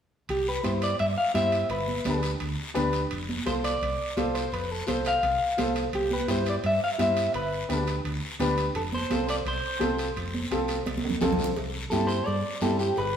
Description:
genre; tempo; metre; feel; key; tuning
latin, cumbia; 170 BPM; 4/4; straight; C major; A4 = 441 Hz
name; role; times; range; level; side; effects
electric guitar at the edge of break-up; melody; 0.3-13.2 s; G4 to F5; -28 LUFS; equal; spring reverb
hollow-body short-scale fingered electric bass; bass; 0.3-13.2 s; F1 to G2; -32 LUFS; equal; none
guiro; percussion; 0.3-13.2 s; none; -38 LUFS; left 3 dB; none
timbales and cowbell; percussion; 0.3-13.1 s; none; -38 LUFS; right 4 dB; none
warm upright piano; accompaniment; 0.6-12.9 s; C4 to C5; -31 LUFS; left 2 dB; none
congas; percussion; 0.6-12.8 s; none; -33 LUFS; right 2 dB; none
room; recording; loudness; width
wet stone room reverb, RT60 1.3 s; band playing live in one room; -25 LUFS; side -8 dB against mid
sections
0.3-11.6 A section; 11.6-13.2 B section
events
drum fill 10.9-11.6; clean electric guitar solo 11.6-13.2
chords
0.3 C; 1.7 G; 3.1 F; 5.9 C; 7.3 G; 8.8 F; 11.6 C

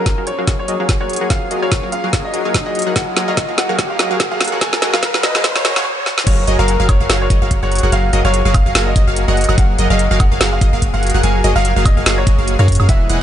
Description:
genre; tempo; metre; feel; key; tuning
future bass; 145 BPM; 4/4; swing 56% on 16ths, half-time; Gb major; A4 = 440 Hz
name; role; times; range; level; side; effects
bright grand piano; melody; 0.0-13.2 s; Bb4 to Ab5; -22 LUFS; left 1 dB; sidechain pumping, dub echo
shimmering ambient pad; sustained chords; 0.0-13.2 s; D#3 to Bb4; -28 LUFS; left 2 dB; chorus, built-in reverb, sidechain pumping
supersaw stab; riff; 0.0-13.2 s; E3 to Gb5; -20 LUFS; equal; sidechain pumping, low-pass filter
riser; sound effects; 1.2-5.9 s; none; -26 LUFS; right 1 dB; none
electronic kick drum; drums; 0.1-13.0 s; none; -15 LUFS; equal; studio reverb
trap drum kit; drums; 0.1-13.2 s; crash cymbal, hi-hat, snare drum, woodblock; -19 LUFS; equal; studio reverb
wide unison pluck; arpeggios; 6.3-13.2 s; Eb5 to Gb5; -25 LUFS; right 1 dB; phaser, sidechain pumping
long sustained 808-style bass; bass; 6.3-13.2 s; E1 to Gb2; -16 LUFS; equal; tube saturation, sidechain pumping
room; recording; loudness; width
light reverb, digital ambience; high-pass filter, nothing above 10.9 kHz; -13 LUFS; side -10 dB against mid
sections
0.0-6.3 A section; 6.3-13.2 B section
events
build-up 0.0-6.3; drum fill 0.0-5.9, 6.1; filter sweep on supersaw synth 0.0-6.3; filter sweep 0.0-6.3; riser 1.2-5.9; stop 5.9-6.3; drop 6.3-13.2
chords
0.0 Gbmaj9

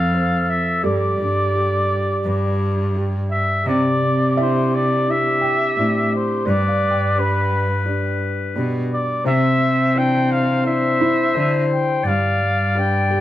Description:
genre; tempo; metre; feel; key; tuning
acoustic folk-pop ballad; 86 BPM; 4/4; straight; C major; A4 = 440 Hz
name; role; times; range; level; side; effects
warm flugelhorn; melody; 0.0-13.2 s; B4 to G5; -21 LUFS; equal; plate reverb
warm clarinet; second line; 0.0-13.2 s; G4 to D5; -24 LUFS; left 3 dB; none
warm concert grand piano; accompaniment; 0.0-13.2 s; C3 to C5; -26 LUFS; left 2 dB; none
dark cello; bass; 0.0-13.2 s; F2 to D3; -21 LUFS; right 1 dB; none
felt-muted upright piano; arpeggios; 0.8-13.2 s; E4 to G5; -27 LUFS; right 2 dB; none
room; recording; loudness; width
moderate studio reverb, RT60 0.7 s; none; -17 LUFS; side -13 dB against mid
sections
0.0-3.7 A section; 3.7-13.2 B section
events
none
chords
0.0 F; 0.8 G; 3.7 Cadd9; 6.5 G; 9.3 Cadd9; 12.1 G

